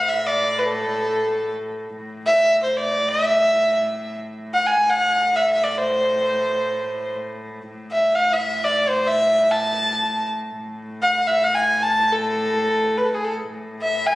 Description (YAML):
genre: Persian modal ensemble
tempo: free time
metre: none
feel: none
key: A avaz esfahan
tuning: A4 = 439 Hz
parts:
  - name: clear kamancheh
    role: melody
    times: 0.0-14.2 s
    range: G#4 to A5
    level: -18 LUFS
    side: equal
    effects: none
  - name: rich cello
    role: drone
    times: 0.0-14.2 s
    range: A2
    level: -31 LUFS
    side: left 1 dB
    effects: none
room: moderate scoring stage reverb, RT60 1.6 s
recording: recorded on a phone in the room, studio reverb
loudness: -18 LUFS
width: side -18 dB against mid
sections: 0.0-2.0 A section; 2.0-13.5 A section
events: none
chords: none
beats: free time